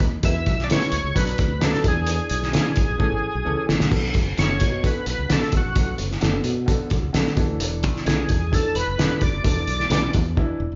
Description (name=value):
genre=uptempo 1960s-style soul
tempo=130 BPM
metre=4/4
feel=straight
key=B dorian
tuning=A4 = 440 Hz
part: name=modern bright fingered electric bass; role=bass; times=0.0-10.8 s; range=E1 to B2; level=-29 LUFS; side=equal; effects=none
part: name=cloth-damped thuddy drum kit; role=drums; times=0.0-10.5 s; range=crash cymbal, hi-hat, kick drum, snare drum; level=-24 LUFS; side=equal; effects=none
part: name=warm baby grand piano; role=accompaniment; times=0.2-10.6 s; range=D3 to B4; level=-32 LUFS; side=equal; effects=none
part: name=overdriven tonewheel organ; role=melody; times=0.3-10.1 s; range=F#4 to E5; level=-29 LUFS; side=equal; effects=chorus vibrato, slow rotary speaker
room=moderate large studio reverb, RT60 0.9 s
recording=band playing live in one room, nothing above 7.5 kHz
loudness=-22 LUFS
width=mono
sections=0.0-3.9 A section; 3.9-10.8 B section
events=drum fill 3.0-3.9, 10.4-10.8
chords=0.2 E; 1.2 Bm; 1.8 E7; 3.0 A; 3.9 Bm7; 7.4 E7sus4